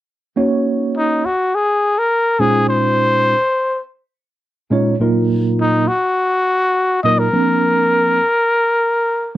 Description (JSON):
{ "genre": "jazz", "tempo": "103 BPM", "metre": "4/4", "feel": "swing 53% on 16ths", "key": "unclear", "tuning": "A4 = 440 Hz", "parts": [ { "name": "tine electric piano", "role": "accompaniment", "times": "0.4-9.4 s", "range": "Bb2 to Db5", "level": "-16 LUFS", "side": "right 2 dB", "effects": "overdrive, fast stereo tremolo, lush chorus" }, { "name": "breathy trumpet", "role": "melody", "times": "1.0-9.4 s", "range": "Eb4 to Eb5", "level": "-14 LUFS", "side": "left 1 dB", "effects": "none" } ], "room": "light reverb", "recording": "dry, close 1970s-style studio recording", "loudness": "-14 LUFS", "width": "side -14 dB against mid", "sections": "0.4-9.4 A section", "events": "none", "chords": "0.4 Gb6/Bb; 2.4 Dbmaj9/Bb; 5.0 Ebmadd9/Bb; 7.3 Bbadd9", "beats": "| 0.36 0.94 1.53 2.11 | 2.69 3.27 3.85 4.43 | 5.01 5.59 6.17 6.75 | 7.33 7.91 8.49 9.07" }